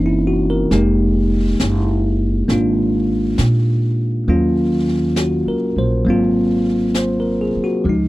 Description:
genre	jazz ballad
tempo	68 BPM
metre	4/4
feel	swing 68% on 8ths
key	unclear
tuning	A4 = 442 Hz
part	bell-like tine electric piano	accompaniment	0.0-8.1 s	E3 to C5	-17 LUFS	equal	none
part	upright bass	bass	0.0-8.1 s	F1 to Bb2	-19 LUFS	right 1 dB	none
part	jazz brush drum kit	drums	0.7-8.1 s	brushed snare drum, hi-hat, snare drum	-27 LUFS	equal	none
room	little or no reverb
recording	dry, close 1970s-style studio recording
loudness	-15 LUFS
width	side -18 dB against mid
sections	0.0-8.1 A section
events	none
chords	0.0 F#7#11; 0.7 Fm11; 4.3 Ebm7; 6.0 Ab13

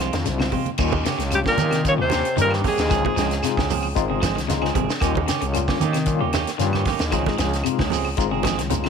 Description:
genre	afrobeat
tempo	114 BPM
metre	4/4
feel	straight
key	Eb mixolydian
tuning	A4 = 439 Hz
part	electric guitar at the edge of break-up	arpeggios	0.0-8.9 s	C3 to F3	-29 LUFS	left 12 dB	harmonic tremolo
part	clean electric guitar	stabs	0.0-8.9 s	Eb3 to Ab4	-27 LUFS	right 12 dB	tape echo
part	growling FM bass	bass	0.0-8.9 s	Ab1 to Eb3	-25 LUFS	equal	none
part	tight funk drum kit	drums	0.0-8.9 s	crash cymbal, hi-hat, kick drum, snare drum	-27 LUFS	left 1 dB	none
part	claves	percussion	0.0-8.9 s	none	-36 LUFS	left 1 dB	none
part	shekere	percussion	0.0-8.9 s	none	-32 LUFS	right 5 dB	none
part	tine electric piano	accompaniment	0.3-8.9 s	G3 to F4	-28 LUFS	left 16 dB	medium tremolo
part	congas	percussion	0.4-8.8 s	none	-29 LUFS	right 10 dB	none
part	breathy alto saxophone	melody	1.3-3.7 s	G4 to Db5	-23 LUFS	equal	tape echo
part	brilliant trombone section	second line	1.3-3.7 s	G2 to Db3	-30 LUFS	left 13 dB	none
part	clear trombone	second line	1.4-3.7 s	G3 to Db4	-33 LUFS	right 13 dB	none
room	light reverb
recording	1960s-style stereo with parts hard left and right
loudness	-19 LUFS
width	side -6 dB against mid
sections	0.8-8.9 A section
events	none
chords	0.0 Dbmaj7; 0.8 Eb7; 2.9 Dbmaj7; 5.0 Eb7; 7.1 Dbmaj7

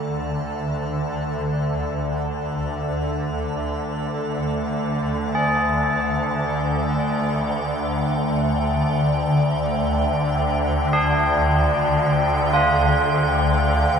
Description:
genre	dark ambient drone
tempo	free time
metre	none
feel	none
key	unclear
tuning	A4 = 440 Hz
part	tubular bells	arpeggios	0.0-14.0 s	D4 to G#4	-24 LUFS	right 1 dB	diffuse ambient delay
part	swarming drone	drone	0.0-14.0 s	D2 to D3	-21 LUFS	left 1 dB	built-in reverb
part	icy glass pad	texture	0.0-14.0 s	A3 to G5	-26 LUFS	right 1 dB	chorus, built-in reverb
room	wet cathedral reverb, RT60 6.4 s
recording	cassette tape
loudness	-19 LUFS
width	side -7 dB against mid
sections	0.0-14.0 A section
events	fade-in on synth drone 0.0-14.0; fade-in on ambient pad 0.0-14.0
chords	0.0 Dm

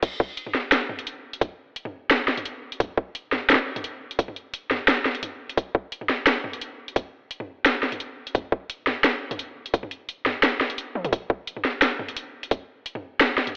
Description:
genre	drum and bass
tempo	173 BPM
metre	4/4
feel	swing 53% on 16ths, half-time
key	none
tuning	none
part	drum and bass drum kit	drums	0.0-13.5 s	crash cymbal, hi-hat, snare drum, toms	-21 LUFS	equal	small room reverb
part	electronic kick drum	drums	0.0-12.6 s	none	-21 LUFS	equal	small room reverb
room	moderate echo chamber reverb, RT60 2.2 s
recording	dry, gritty hardware recording, cassette tape, high-pass filter, telephone sound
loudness	-22 LUFS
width	side -32 dB against mid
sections	0.0-13.6 A section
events	drop 0.0-13.6; break 10.8-11.1; drum fill 11.0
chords	none

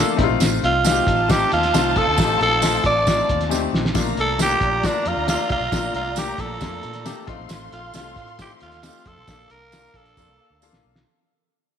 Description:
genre	uptempo 1960s-style soul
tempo	135 BPM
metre	4/4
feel	straight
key	Bb major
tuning	A4 = 440 Hz
part	growling tenor saxophone	melody	0.0-10.6 s	D4 to D5	-21 LUFS	right 1 dB	none
part	dark studio string section	second line	0.0-11.0 s	Bb3 to C6	-29 LUFS	left 1 dB	none
part	clear upright piano	accompaniment	0.0-10.9 s	G3 to Bb4	-26 LUFS	left 10 dB	none
part	vintage muted fingered electric bass	bass	0.2-11.0 s	A1 to Bb2	-28 LUFS	right 1 dB	transformer saturation
part	cloth-damped thuddy drum kit	drums	0.2-11.1 s	hi-hat, kick drum, snare drum	-23 LUFS	equal	none
part	tambourine	percussion	0.4-10.7 s	none	-32 LUFS	right 14 dB	none
room	moderate echo chamber reverb, RT60 1.8 s, small room ambience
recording	1960s-style stereo with parts hard left and right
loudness	-17 LUFS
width	side -8 dB against mid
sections	0.0-11.1 A section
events	fade-out 0.0-11.1; drum fill 3.5-4.0, 10.2-11.1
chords	0.2 F7/A; 4.0 Bbmaj7; 7.3 F7/A; 9.3 Bbmaj7

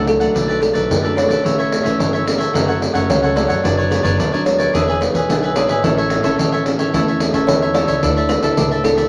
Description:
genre	samba and choro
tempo	109 BPM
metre	4/4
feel	straight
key	unclear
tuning	A4 = 440 Hz
part	kalimba	melody	0.0-9.1 s	A4 to D5	-23 LUFS	equal	none
part	cavaquinho	accompaniment	0.0-9.1 s	D4 to F#5	-24 LUFS	equal	none
part	nylon-string guitar	accompaniment	0.0-9.1 s	F#2 to A4	-24 LUFS	equal	none
part	upright bass	bass	0.0-9.0 s	E1 to F#2	-26 LUFS	equal	none
part	pandeiro	percussion	0.1-9.1 s	none	-22 LUFS	equal	none
room	wet studio reverb, RT60 0.5 s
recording	none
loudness	-17 LUFS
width	mono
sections	0.0-9.1 A section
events	none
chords	0.4 Bm7; 1.4 A; 2.5 F#m; 3.6 Bmadd9/F#; 4.7 E7; 5.8 A; 8.0 Dsus2

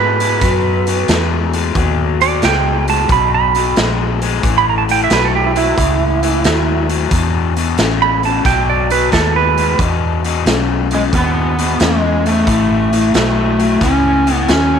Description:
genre	electric blues shuffle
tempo	90 BPM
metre	4/4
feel	swing 68% on 8ths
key	E major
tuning	A4 = 440 Hz
part	clean lap steel guitar	second line	0.0-9.8 s	E4 to B5	-15 LUFS	right 11 dB	none
part	raw garage guitar	riff	0.0-14.8 s	E2 to G#3	-18 LUFS	left 13 dB	overdrive
part	vintage muted fingered electric bass	bass	0.0-14.8 s	A1 to G#2	-18 LUFS	equal	none
part	raw garage drum kit	drums	0.2-14.7 s	hi-hat, kick drum, snare drum	-19 LUFS	right 1 dB	none
part	lead guitar through a small cranked amp	melody	10.9-14.8 s	G#3 to C#4	-14 LUFS	right 1 dB	overdrive
room	light reverb, studio ambience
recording	1960s-style stereo with parts hard left and right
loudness	-12 LUFS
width	side -7 dB against mid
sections	0.0-9.8 A section; 9.8-14.8 B section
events	electric slide guitar solo 0.0-9.8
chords	0.0 B; 4.4 A; 7.1 E5; 8.5 B; 9.8 E5; 12.5 A

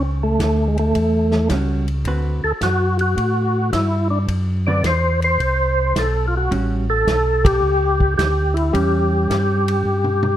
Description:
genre	soul jazz organ trio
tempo	108 BPM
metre	4/4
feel	swing 67% on 8ths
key	A mixolydian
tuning	A4 = 440 Hz
part	percussive tonewheel organ	melody	0.0-10.4 s	G#3 to D5	-19 LUFS	equal	slow rotary speaker, overdrive, chorus vibrato
part	mellow tonewheel organ	bass	0.0-10.4 s	A1 to A2	-20 LUFS	equal	slow rotary speaker
part	warm soul drum kit	drums	0.4-10.4 s	hi-hat, kick drum, ride cymbal, snare drum, toms	-24 LUFS	equal	none
part	vintage hollow-body jazz guitar	accompaniment	1.5-10.3 s	D3 to B4	-24 LUFS	right 2 dB	none
room	light reverb, small room ambience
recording	rough home demo mix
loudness	-16 LUFS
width	side -11 dB against mid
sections	0.0-10.4 A section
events	band accent 7.3; drum fill 9.8-10.4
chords	0.0 A13; 2.1 D13; 6.5 A9

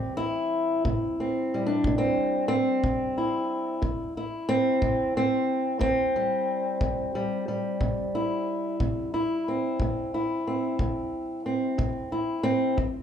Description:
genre	acoustic country blues, solo or duo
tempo	60 BPM (dotted quarters)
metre	12/8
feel	straight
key	C major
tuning	A4 = 440 Hz
part	fingerpicked old ladder-braced acoustic guitar	melody	0.0-13.0 s	F2 to G4	-25 LUFS	equal	plate reverb, slapback echo
part	kick drum	drums	0.8-12.9 s	none	-31 LUFS	equal	none
room	moderate club reverb, RT60 0.5 s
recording	live gig heard through the venue's PA, club reverb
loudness	-24 LUFS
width	side -8 dB against mid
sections	0.0-13.0 A section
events	none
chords	0.0 C

